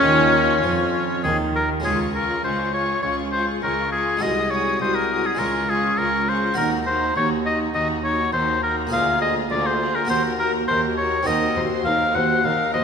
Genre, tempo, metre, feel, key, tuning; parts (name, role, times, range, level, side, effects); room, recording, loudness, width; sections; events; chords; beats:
classical, baroque-style concerto movement with solo episodes; 102 BPM; 4/4; straight; Db major; A4 = 440 Hz
clear oboe; melody; 0.0-12.8 s; Db4 to Gb5; -21 LUFS; left 2 dB
rich chamber violin section; melody; 0.0-12.8 s; Db5 to Eb6; -31 LUFS; left 7 dB
rich chamber violin section; second line; 0.0-12.8 s; Db4 to C5; -31 LUFS; left 5 dB
harpsichord; accompaniment; 0.0-12.8 s; C2 to Bb4; -26 LUFS; right 2 dB
warm chamber viola section; accompaniment; 0.0-12.8 s; Eb4 to Gb4; -29 LUFS; left 1 dB
warm chamber cello section; bass; 0.0-12.8 s; C2 to F3; -29 LUFS; right 4 dB
warm studio double bass section; bass; 0.0-1.9 s; Eb2 to F2; -27 LUFS; right 4 dB
wet scoring stage reverb, RT60 2.0 s; minimal, uncompressed stereo recording; -19 LUFS; side -6 dB against mid
0.0-1.9 A section; 1.9-12.8 B section
0.0 Db; 4.2 Ab7/C; 5.4 Db; 6.6 Ebm; 8.9 Bb7/D; 10.1 Ebm; 11.3 Cm7b5/Eb
0.02 0.64 1.25 | 1.85 2.45 3.04 3.63 | 4.22 4.81 5.40 5.99 | 6.58 7.17 7.75 8.34 | 8.93 9.51 10.10 10.69 | 11.27 11.86 12.45